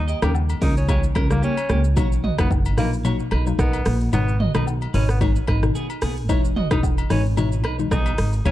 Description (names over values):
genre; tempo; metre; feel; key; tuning
afrobeats; 111 BPM; 4/4; swing 55% on 16ths; unclear; A4 = 440 Hz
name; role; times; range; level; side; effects
raspy tenor saxophone; melody; 0.0-8.5 s; A#3 to G4; -30 LUFS; equal; none
upright bass; bass; 0.0-8.5 s; E1 to D#2; -22 LUFS; equal; none
clean electric guitar; riff; 0.1-8.5 s; A#3 to D#5; -30 LUFS; right 3 dB; digital delay
deep house drum kit; drums; 0.1-8.5 s; hi-hat, kick drum, rim click, shaker, toms; -23 LUFS; equal; overdrive
hollow square pluck; accompaniment; 0.2-8.5 s; B2 to D#4; -26 LUFS; left 4 dB; chorus
agogo bells and woodblock; percussion; 0.2-8.5 s; none; -35 LUFS; left 7 dB; none
room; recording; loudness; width
digital ambience; dark, warm production; -18 LUFS; side -14 dB against mid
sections
0.0-8.5 A section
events
none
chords
0.0 D#7; 2.0 Bmaj7; 4.1 G#m; 6.3 Emaj7